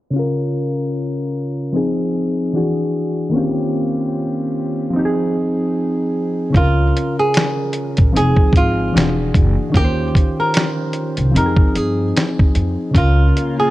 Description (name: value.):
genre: lo-fi hip hop.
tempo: 75 BPM.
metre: 4/4.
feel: swing 57% on 16ths.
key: unclear.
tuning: A4 = 440 Hz.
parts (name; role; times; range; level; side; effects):
soft electric-piano-like synth keys; accompaniment; 0.1-13.7 s; Db3 to C5; -19 LUFS; left 1 dB; chorus, cassette tape.
upright bass; bass; 6.5-13.3 s; E1 to G2; -17 LUFS; equal; none.
dusty soul sampler-style drum kit; drums; 6.5-13.6 s; hi-hat, kick drum, snare drum; -15 LUFS; equal; none.
flamenco guitar; melody; 6.6-13.7 s; F4 to Bb4; -20 LUFS; right 1 dB; none.
room: light reverb.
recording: cassette tape, low-pass filter.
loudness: -15 LUFS.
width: side -16 dB against mid.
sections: 0.1-6.5 A section; 6.5-13.7 B section.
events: filter sweep 0.1-6.5.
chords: 0.1 Db6; 1.7 Fm7; 2.5 E9; 3.3 Eb13; 4.9 Fm7; 6.5 Db6; 8.1 Fm7; 8.9 E9; 9.7 Eb13; 11.3 Fm7; 12.9 Db6.